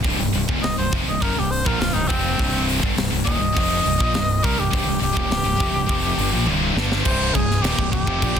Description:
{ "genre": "heavy metal", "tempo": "103 BPM", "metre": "4/4", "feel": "straight", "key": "C minor", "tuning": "A4 = 440 Hz", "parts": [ { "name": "scooped high-gain guitar", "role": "riff", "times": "0.0-8.4 s", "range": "C2 to G3", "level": "-26 LUFS", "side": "left 9 dB", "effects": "distortion" }, { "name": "scooped high-gain guitar", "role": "riff", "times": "0.0-8.4 s", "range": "C2 to G3", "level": "-27 LUFS", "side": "right 10 dB", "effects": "distortion" }, { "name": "scooped high-gain guitar", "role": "riff", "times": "0.0-8.4 s", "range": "C2 to G3", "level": "-27 LUFS", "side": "equal", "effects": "distortion" }, { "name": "fuzz fingered electric bass", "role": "bass", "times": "0.0-8.4 s", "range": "C1 to C2", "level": "-26 LUFS", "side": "equal", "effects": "overdrive" }, { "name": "tight metal drum kit", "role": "drums", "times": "0.0-8.4 s", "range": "crash cymbal, hi-hat, kick drum, snare drum, toms", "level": "-24 LUFS", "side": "equal", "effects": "none" }, { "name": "warm cor anglais", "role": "melody", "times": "0.6-8.4 s", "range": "C4 to Eb5", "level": "-25 LUFS", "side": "equal", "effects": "ping-pong delay" } ], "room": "little or no reverb", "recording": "dense, heavily limited modern master", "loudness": "-18 LUFS", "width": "side -8 dB against mid", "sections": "0.0-7.1 A section; 7.1-8.4 B section", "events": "cor anglais solo 0.0-7.1; drum fill 6.5-7.1", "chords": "0.0 Cm", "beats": "| 0.05 0.64 1.22 1.81 | 2.39 2.98 3.56 4.14 | 4.73 5.31 5.89 6.47 | 7.06 7.64 8.22" }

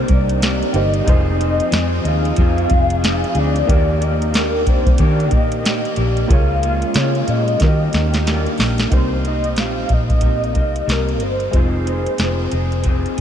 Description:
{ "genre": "indie pop, bedroom pop", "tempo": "92 BPM", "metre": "4/4", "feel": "swing 60% on 16ths", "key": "unclear", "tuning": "A4 = 435 Hz", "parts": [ { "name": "soft octave-layered synth lead", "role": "melody", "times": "0.0-13.2 s", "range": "Bb4 to F5", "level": "-22 LUFS", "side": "left 1 dB", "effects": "phaser, ensemble chorus, tape echo" }, { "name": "electric guitar through a small old amp", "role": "accompaniment", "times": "0.0-13.2 s", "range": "C3 to Ab4", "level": "-24 LUFS", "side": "left 3 dB", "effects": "wide subtle chorus, warbly pitch drift" }, { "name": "warm upright piano", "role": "accompaniment", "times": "0.0-13.2 s", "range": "Ab3 to Db5", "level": "-29 LUFS", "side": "right 5 dB", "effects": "cassette tape" }, { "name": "soft string machine", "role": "sustained chords", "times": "0.0-8.9 s", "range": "C3 to Ab4", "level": "-28 LUFS", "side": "right 1 dB", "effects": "phaser, ensemble chorus" }, { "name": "vintage muted fingered electric bass", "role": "bass", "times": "0.0-13.2 s", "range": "F1 to Eb3", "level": "-20 LUFS", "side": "equal", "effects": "none" }, { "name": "soft vintage rhythm box", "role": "drums", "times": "0.1-13.2 s", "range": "hi-hat, kick drum, snare drum", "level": "-19 LUFS", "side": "equal", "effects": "none" } ], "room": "light reverb, digital ambience", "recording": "none", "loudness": "-14 LUFS", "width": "side -9 dB against mid", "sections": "0.0-8.9 A section; 8.9-13.2 B section", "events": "drum fill 7.6-8.9", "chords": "0.0 Cm7; 1.1 Fm7; 3.7 Ebmaj7; 6.3 Db6; 7.6 Ebmaj7; 8.9 Cm7; 11.5 Fm7", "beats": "0.42 | 1.07 1.73 2.38 3.04 | 3.69 4.34 5.00 5.65 | 6.30 6.96 7.61 8.27 | 8.92 9.58 10.23 10.89 | 11.54 12.20 12.86" }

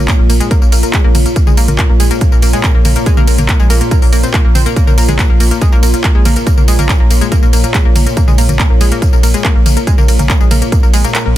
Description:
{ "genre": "driving peak-time techno", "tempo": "141 BPM", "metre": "4/4", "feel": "straight", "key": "Bb minor", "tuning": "A4 = 438 Hz", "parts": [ { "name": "analog pluck", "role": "riff", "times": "0.0-11.3 s", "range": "Ab3 to C4", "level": "-18 LUFS", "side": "equal", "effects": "chorus, tube saturation, sidechain pumping, tape echo" }, { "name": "saturated sub bass", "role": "bass", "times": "0.0-11.4 s", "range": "Bb1", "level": "-13 LUFS", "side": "equal", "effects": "overdrive, sidechain pumping, low-pass filter" }, { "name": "analog drone", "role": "drone", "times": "0.0-11.4 s", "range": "Bb2", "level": "-22 LUFS", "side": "left 1 dB", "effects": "chorus, sidechain pumping" }, { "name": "warbly tape-like pad", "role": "texture", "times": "0.0-11.4 s", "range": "F4 to Bb5", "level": "-22 LUFS", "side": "equal", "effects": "chorus, built-in reverb, sidechain pumping" }, { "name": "electronic kick drum", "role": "drums", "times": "0.1-10.8 s", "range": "none", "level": "-11 LUFS", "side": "equal", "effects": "small room ambience" }, { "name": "techno drum kit", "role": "drums", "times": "0.1-11.2 s", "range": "handclaps, hi-hat, ride cymbal, tambourine, toms", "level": "-17 LUFS", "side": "equal", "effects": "sidechain pumping on hats, small room ambience, sidechain pumping on toms, sidechain pumping on cymbals, sidechain pumping on perc" } ], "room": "little or no reverb", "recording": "dense, heavily limited modern master", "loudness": "-8 LUFS", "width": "side -14 dB against mid", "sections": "0.0-11.4 A section", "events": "kick drops out 11.1", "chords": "0.0 Bbm", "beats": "0.08 0.51 0.94 | 1.36 1.79 2.21 2.64 | 3.06 3.49 3.91 4.34 | 4.76 5.19 5.62 6.04 | 6.47 6.89 7.32 7.74 | 8.17 8.60 9.02 9.45 | 9.87 10.30 10.72 11.15" }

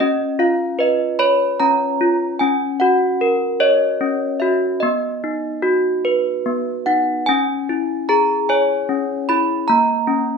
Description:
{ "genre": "children's music, lullaby", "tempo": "50 BPM (dotted quarters)", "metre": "6/8", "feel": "rubato", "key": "unclear", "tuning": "A4 = 440 Hz", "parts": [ { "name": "desk bells", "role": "solo", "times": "0.0-10.4 s", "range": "A#3 to B5", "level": "-16 LUFS", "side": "equal", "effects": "none" } ], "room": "moderate large studio reverb, RT60 0.9 s", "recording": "band playing live in one room", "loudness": "-16 LUFS", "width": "side -5 dB against mid", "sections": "0.0-7.3 A section; 7.3-10.4 B section", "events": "none", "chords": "0.0 C#7; 2.4 F#; 4.8 B; 7.3 C#m; 9.7 F# (rootless)", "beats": "| 0.01 1.20 | 2.39 3.59 | 4.80 6.03 | 7.27 8.48 | 9.68" }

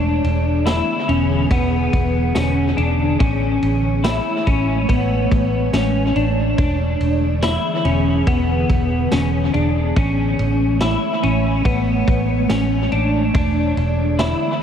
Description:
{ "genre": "dream pop", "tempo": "71 BPM", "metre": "4/4", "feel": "straight", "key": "E mixolydian", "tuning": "A4 = 440 Hz", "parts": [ { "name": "ethereal airy pad", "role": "sustained chords", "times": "0.0-14.6 s", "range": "D3 to C#5", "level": "-23 LUFS", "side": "right 1 dB", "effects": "ensemble chorus, built-in reverb, shimmer reverb" }, { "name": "clean electric guitar", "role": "arpeggios", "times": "0.0-14.6 s", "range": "B3 to E4", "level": "-20 LUFS", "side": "left 2 dB", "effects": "ensemble chorus, dub echo, shimmer reverb" }, { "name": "vintage muted fingered electric bass", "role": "bass", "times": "0.0-14.3 s", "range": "E1 to A1", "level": "-20 LUFS", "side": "equal", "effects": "none" }, { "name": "vintage drum kit", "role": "drums", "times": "0.2-14.4 s", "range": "kick drum, ride cymbal, snare drum, tambourine", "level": "-23 LUFS", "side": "equal", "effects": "dub echo" } ], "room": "light reverb, small room ambience", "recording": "echo-heavy mix", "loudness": "-16 LUFS", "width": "side -8 dB against mid", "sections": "0.0-14.6 A section", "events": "none", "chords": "0.0 E7; 3.2 Amaj7; 6.6 E7; 10.0 Amaj7; 13.3 E7", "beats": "0.67 1.51 2.36 | 3.20 4.05 4.89 5.74 | 6.58 7.43 8.27 9.12 | 9.96 10.81 11.65 12.50 | 13.34 14.19" }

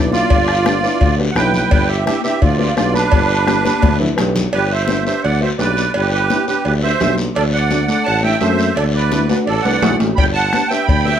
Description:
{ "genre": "latin, cumbia", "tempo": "170 BPM", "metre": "4/4", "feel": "straight", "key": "G major", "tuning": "A4 = 440 Hz", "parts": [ { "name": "musette accordion", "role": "melody", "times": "0.0-11.2 s", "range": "D4 to B5", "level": "-17 LUFS", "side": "right 4 dB", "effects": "none" }, { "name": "dark upright piano", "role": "accompaniment", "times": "0.0-11.1 s", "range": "A3 to A4", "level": "-21 LUFS", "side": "left 2 dB", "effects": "none" }, { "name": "warm tuba", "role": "bass", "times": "0.0-11.2 s", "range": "G1 to F#2", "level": "-19 LUFS", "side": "equal", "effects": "none" }, { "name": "congas", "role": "percussion", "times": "0.1-11.2 s", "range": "none", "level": "-24 LUFS", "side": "left 4 dB", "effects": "none" }, { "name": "guiro", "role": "percussion", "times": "0.1-11.2 s", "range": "none", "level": "-29 LUFS", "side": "left 3 dB", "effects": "none" }, { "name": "bombo", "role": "percussion", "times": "0.3-4.4, 10.2-11.1 s", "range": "none", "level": "-16 LUFS", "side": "left 2 dB", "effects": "none" }, { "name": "cowbell and timbales", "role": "percussion", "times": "0.3-11.1 s", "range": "none", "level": "-23 LUFS", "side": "right 1 dB", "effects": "none" } ], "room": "light reverb", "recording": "none", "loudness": "-13 LUFS", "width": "side -9 dB against mid", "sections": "0.0-4.5 A section; 4.5-11.2 B section", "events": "accordion solo 0.0-4.5; drum fill 3.5-4.5, 9.3-10.2", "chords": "0.0 G; 7.4 D; 10.2 G", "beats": "| 0.31 0.67 1.02 1.37 | 1.72 2.07 2.42 2.78 | 3.13 3.48 3.83 4.18 | 4.54 4.89 5.24 5.59 | 5.95 6.30 6.65 7.00 | 7.36 7.71 8.06 8.41 | 8.77 9.12 9.47 9.82 | 10.18 10.53 10.88" }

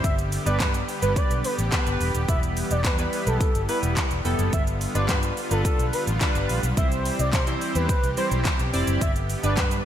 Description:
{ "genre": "dance-pop", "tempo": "107 BPM", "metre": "4/4", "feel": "straight", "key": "unclear", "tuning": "A4 = 440 Hz", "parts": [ { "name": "expressive portamento lead", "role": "melody", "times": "0.0-9.7 s", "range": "A4 to E5", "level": "-30 LUFS", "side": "equal", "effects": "chorus, sidechain pumping, digital delay" }, { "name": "chorused polysynth", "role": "accompaniment", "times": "0.0-9.8 s", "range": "G3 to D5", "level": "-29 LUFS", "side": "right 1 dB", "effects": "sidechain pumping" }, { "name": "soft supersaw", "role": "sustained chords", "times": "0.0-9.8 s", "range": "D3 to G4", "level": "-32 LUFS", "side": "equal", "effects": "sidechain pumping" }, { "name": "vintage muted fingered electric bass", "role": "bass", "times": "0.0-9.8 s", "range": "D#1 to C3", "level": "-26 LUFS", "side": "equal", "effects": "sidechain pumping" }, { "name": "pop drum kit", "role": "drums", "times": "0.0-9.8 s", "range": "handclaps, hi-hat, kick drum, shaker, snare drum", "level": "-25 LUFS", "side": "equal", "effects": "gated reverb" } ], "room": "light reverb", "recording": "bright 1980s-style digital production", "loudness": "-21 LUFS", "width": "side -10 dB against mid", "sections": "0.0-9.8 A section", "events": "none", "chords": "0.0 G; 2.3 Em; 4.5 G7; 6.8 C; 9.0 G", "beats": "| 0.04 0.60 1.17 1.73 | 2.29 2.85 3.41 3.97 | 4.53 5.09 5.65 6.21 | 6.77 7.33 7.89 8.46 | 9.02 9.58" }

